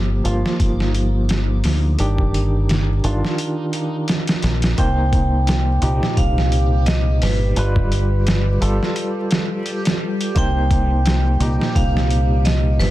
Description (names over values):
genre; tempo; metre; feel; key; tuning
trip hop; 86 BPM; 4/4; swing 55% on 16ths; C dorian; A4 = 441 Hz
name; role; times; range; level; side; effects
barky tine electric piano; accompaniment; 0.0-12.9 s; Bb2 to C5; -23 LUFS; equal; overdrive, tremolo, vintage 12-bit sampler grit, tape echo
deep dub fingered electric bass; bass; 0.0-12.9 s; G1 to D2; -18 LUFS; equal; none
backwards swelling texture; texture; 0.0-12.9 s; G3 to D6; -32 LUFS; equal; built-in reverb
dusty soul sampler-style drum kit; drums; 0.2-12.9 s; hi-hat, kick drum, snare drum; -21 LUFS; equal; overdrive
vibraphone with hard mallets; melody; 4.8-12.9 s; B4 to G5; -26 LUFS; right 2 dB; vintage 12-bit sampler grit, tape echo
room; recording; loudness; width
little or no reverb; dense, heavily limited modern master, vinyl crackle; -16 LUFS; side -15 dB against mid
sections
0.0-4.8 A section; 4.8-12.9 B section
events
break 3.4-4.8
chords
0.0 Gm7; 4.8 Cm7; 7.6 G7; 10.4 Cm7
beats
0.59 1.29 | 1.99 2.69 3.38 4.08 | 4.78 5.48 6.17 6.87 | 7.57 8.27 8.96 9.66 | 10.36 11.06 11.76 12.45